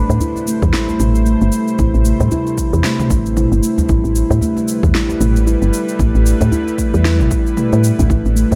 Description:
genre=organic downtempo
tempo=114 BPM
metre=4/4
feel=swing 58% on 16ths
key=unclear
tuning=A4 = 440 Hz
part: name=bowed-like drone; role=sustained chords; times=0.0-8.6 s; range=C3 to C5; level=-26 LUFS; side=equal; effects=built-in reverb, sidechain pumping
part: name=steel tongue drum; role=arpeggios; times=0.0-8.6 s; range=G3 to E4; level=-21 LUFS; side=equal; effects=tape echo
part: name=woody FM bass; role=bass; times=0.0-8.6 s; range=G1 to A2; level=-17 LUFS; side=equal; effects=none
part: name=quartz singing bowl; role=texture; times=0.0-8.6 s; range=B5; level=-36 LUFS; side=equal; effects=none
part: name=deep house drum kit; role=drums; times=0.1-8.6 s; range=shaker, snare drum, toms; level=-26 LUFS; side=equal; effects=none
part: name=djembe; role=percussion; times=0.1-8.6 s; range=none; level=-24 LUFS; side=equal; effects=none
part: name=electronic kick drum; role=drums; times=0.6-8.2 s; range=none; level=-21 LUFS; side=equal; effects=none
room=light reverb, studio reverb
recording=none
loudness=-15 LUFS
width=mono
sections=0.0-8.6 A section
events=none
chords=0.0 Am; 3.9 Em7

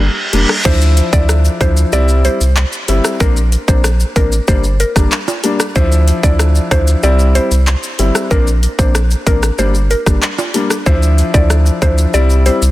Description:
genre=dancehall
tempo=94 BPM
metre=4/4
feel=straight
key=D minor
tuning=A4 = 441 Hz
part: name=saturated sub bass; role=bass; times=0.0-12.7 s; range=F1 to D2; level=-12 LUFS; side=equal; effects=none
part: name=reverse cymbal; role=sound effects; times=0.0-0.7 s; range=none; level=-18 LUFS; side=right 2 dB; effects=none
part: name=warm baby grand piano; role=accompaniment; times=0.3-12.6 s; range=F3 to E4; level=-18 LUFS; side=left 3 dB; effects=none
part: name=island pop drum kit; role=drums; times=0.3-12.7 s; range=crash cymbal, handclaps, hi-hat, kick drum, rim click, shaker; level=-16 LUFS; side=equal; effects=soft clipping on snare
part: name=mallet-like synth pluck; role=melody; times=0.7-12.6 s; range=Bb4 to D5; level=-20 LUFS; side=equal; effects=chorus, digital delay
part: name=maracas and timbales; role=percussion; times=0.7-12.7 s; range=none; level=-25 LUFS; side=right 2 dB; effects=none
room=light reverb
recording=dense, heavily limited modern master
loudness=-10 LUFS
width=side -16 dB against mid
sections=0.7-12.7 A section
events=break 0.0-0.7; reverse cymbal 0.0-0.7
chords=0.0 Gm; 0.7 Dmadd9; 1.9 C; 3.2 Bbadd9; 4.5 Gm; 5.8 Dmadd9; 7.0 C; 8.3 Bbadd9; 9.6 Gm; 10.9 Dmadd9; 12.1 C

